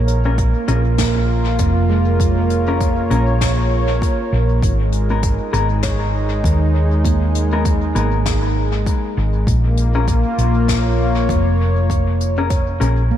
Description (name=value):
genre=ambient dub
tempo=99 BPM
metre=4/4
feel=swing 60% on 16ths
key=unclear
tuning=A4 = 439 Hz
part: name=warm analog pad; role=sustained chords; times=0.0-13.1 s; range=G#3 to C#5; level=-21 LUFS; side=equal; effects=chorus
part: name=handpan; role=arpeggios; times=0.0-13.2 s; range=G#3 to C#5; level=-28 LUFS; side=right 3 dB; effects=low-pass filter, tape echo
part: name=hollow-body short-scale fingered electric bass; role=bass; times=0.0-13.1 s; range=E#1 to D#2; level=-17 LUFS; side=equal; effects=tube saturation
part: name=jazz brush drum kit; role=drums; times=0.1-13.0 s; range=hi-hat, snare drum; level=-29 LUFS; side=left 5 dB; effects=dub echo
part: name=mellow electric guitar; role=stabs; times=0.3-13.0 s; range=B3 to A#4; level=-26 LUFS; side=left 4 dB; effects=dub echo
part: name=electronic kick drum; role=drums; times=0.4-12.6 s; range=none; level=-20 LUFS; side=equal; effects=none
room=light reverb, small room ambience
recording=none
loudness=-15 LUFS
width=side -11 dB against mid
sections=0.0-13.2 A section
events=filter sweep on handpan 0.0-13.2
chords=0.0 A#m7; 4.6 G#sus2; 9.5 A#m7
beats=0.38 0.99 1.59 | 2.20 2.81 3.41 4.02 | 4.62 5.23 5.84 6.44 | 7.05 7.66 8.26 8.87 | 9.47 10.08 10.69 11.29 | 11.90 12.50 13.11